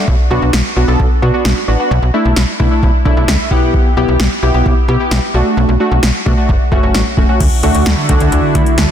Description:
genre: synth-pop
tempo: 131 BPM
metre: 4/4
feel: straight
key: unclear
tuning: A4 = 440 Hz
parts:
  - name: warm analog keys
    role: accompaniment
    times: 0.0-8.7 s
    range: A3 to F#5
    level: -15 LUFS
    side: equal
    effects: chorus
  - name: slap-like FM bass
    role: bass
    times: 0.1-8.9 s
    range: E1 to D3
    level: -14 LUFS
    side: equal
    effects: none
  - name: electro analog drum machine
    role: drums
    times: 0.1-8.9 s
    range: crash cymbal, hi-hat, kick drum, snare drum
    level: -14 LUFS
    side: equal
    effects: overdrive
  - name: chorused pulse-width pad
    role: sustained chords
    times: 7.4-8.9 s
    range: D3 to F#4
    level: -16 LUFS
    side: right 1 dB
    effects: none
room: light reverb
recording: dense, heavily limited modern master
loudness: -10 LUFS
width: side -9 dB against mid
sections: 0.0-7.4 A section; 7.4-8.9 B section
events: synth keys fill 3.1-3.7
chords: 0.1 Bm; 1.9 Asus4/B; 3.5 Em/B; 5.3 D/B; 6.5 F#m; 7.4 Dadd9

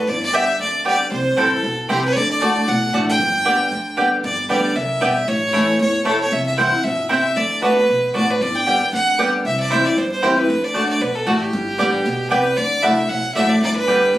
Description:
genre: bluegrass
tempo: 230 BPM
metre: 4/4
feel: swing 54% on 8ths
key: G major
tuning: A4 = 440 Hz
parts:
  - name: clear fiddle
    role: melody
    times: 0.0-14.2 s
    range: F#4 to G5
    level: -19 LUFS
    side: equal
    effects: plate reverb
  - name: picked steel-string acoustic guitar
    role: accompaniment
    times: 0.0-14.2 s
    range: F#2 to G4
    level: -22 LUFS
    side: equal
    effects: none
  - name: upright bass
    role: bass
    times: 0.1-14.2 s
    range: G1 to E2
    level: -29 LUFS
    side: equal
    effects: none
  - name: mandolin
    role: stabs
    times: 0.3-14.0 s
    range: A3 to A5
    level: -19 LUFS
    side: right 1 dB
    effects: none
room: moderate studio reverb, RT60 0.5 s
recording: recorded on a phone in the room, studio reverb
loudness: -16 LUFS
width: side -14 dB against mid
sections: 0.0-4.2 A section; 4.2-12.6 A section; 12.6-14.2 B section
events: none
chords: 0.1 G; 1.1 C; 2.2 D; 3.2 G; 5.3 A; 6.3 C; 7.4 D6; 8.4 G; 9.4 C; 10.5 D; 11.5 G; 12.6 Dadd9; 13.6 G

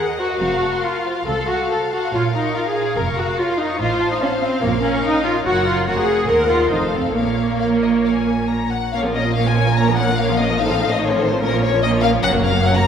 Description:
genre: quick classical-period movement for string orchestra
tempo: 132-149 BPM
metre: 4/4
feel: rubato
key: Bb minor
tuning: A4 = 439 Hz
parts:
  - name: rich chamber violin section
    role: melody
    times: 0.0-12.9 s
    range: Bb4 to Bb5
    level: -23 LUFS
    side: left 6 dB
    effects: none
  - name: warm symphonic violin section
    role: second line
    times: 0.0-12.9 s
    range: Db4 to Db6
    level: -25 LUFS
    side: left 3 dB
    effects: none
  - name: clear symphonic viola section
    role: accompaniment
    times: 0.0-12.9 s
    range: Eb3 to Bb4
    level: -19 LUFS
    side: right 1 dB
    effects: none
  - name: rich symphonic cello section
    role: bass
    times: 0.4-12.9 s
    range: C2 to Bb2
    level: -26 LUFS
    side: right 2 dB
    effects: none
  - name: rich symphonic double bass section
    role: bass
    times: 0.4-12.9 s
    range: F1 to Eb2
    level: -25 LUFS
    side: right 4 dB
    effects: none
room: wet concert hall reverb, RT60 1.8 s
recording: heard from further back in the room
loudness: -16 LUFS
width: side -8 dB against mid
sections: 0.0-8.9 A section; 8.9-12.9 B section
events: none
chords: 0.4 F; 2.1 Bbm; 3.8 F7/A; 4.6 Bbm; 5.5 Gb; 6.3 Cm7b5/Eb; 6.7 F7; 7.1 Bbm; 10.6 F7/A; 11.4 Bbm; 12.2 Gb

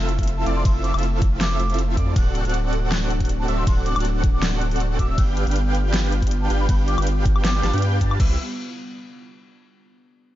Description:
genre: future bass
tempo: 159 BPM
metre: 4/4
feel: swing 53% on 16ths, half-time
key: C major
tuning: A4 = 443 Hz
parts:
  - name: airy breathy pad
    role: sustained chords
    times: 0.0-8.4 s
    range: C3 to E5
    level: -33 LUFS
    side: equal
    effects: chorus, sidechain pumping
  - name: Celtic harp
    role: arpeggios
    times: 0.0-8.4 s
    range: A3 to F5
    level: -36 LUFS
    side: equal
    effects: none
  - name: airy dreamy lead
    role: arpeggios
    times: 0.0-8.3 s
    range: D6 to A6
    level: -35 LUFS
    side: equal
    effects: chorus, sidechain pumping
  - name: dense compressed supersaw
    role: riff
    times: 0.0-8.3 s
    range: C4 to A5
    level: -27 LUFS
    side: right 2 dB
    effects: sidechain pumping, ping-pong delay
  - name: saturated sub bass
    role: bass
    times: 0.0-8.4 s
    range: D1 to G2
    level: -22 LUFS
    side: equal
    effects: sidechain pumping
  - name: dubstep drum kit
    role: drums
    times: 0.1-8.3 s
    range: crash cymbal, hi-hat, ride cymbal, snare drum, woodblock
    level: -29 LUFS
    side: left 1 dB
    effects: overdrive, small room ambience
  - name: electronic kick drum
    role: drums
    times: 0.2-8.3 s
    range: none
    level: -20 LUFS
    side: equal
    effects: overdrive, small room ambience
  - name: mellow hollow silver concert flute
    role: melody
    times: 0.4-7.8 s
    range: A5 to E6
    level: -32 LUFS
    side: left 1 dB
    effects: sidechain pumping, ping-pong delay
room: little or no reverb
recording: dark, warm production, nothing above 7.5 kHz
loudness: -18 LUFS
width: side -14 dB against mid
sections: 0.0-8.2 A section; 8.2-9.7 B section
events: drop 0.0-8.2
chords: 0.0 Fmaj7; 2.2 D7; 5.2 G7; 8.2 Cmaj7

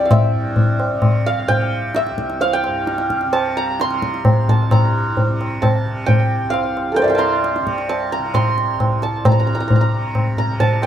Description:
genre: indian classical, Hindustani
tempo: 131 BPM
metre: 5/4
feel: straight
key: C raga khamaj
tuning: A4 = 440 Hz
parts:
  - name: santur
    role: melody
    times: 0.0-10.9 s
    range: A4 to C6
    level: -20 LUFS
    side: right 1 dB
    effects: slapback echo
  - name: tanpura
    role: drone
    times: 0.0-10.9 s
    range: C2 to C3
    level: -26 LUFS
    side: right 2 dB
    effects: none
  - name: tabla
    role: percussion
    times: 0.0-10.9 s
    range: none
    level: -17 LUFS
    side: left 1 dB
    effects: none
room: light reverb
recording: close, detailed microphones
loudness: -15 LUFS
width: side -10 dB against mid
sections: 0.0-4.7 A section; 4.7-10.9 B section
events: none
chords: none

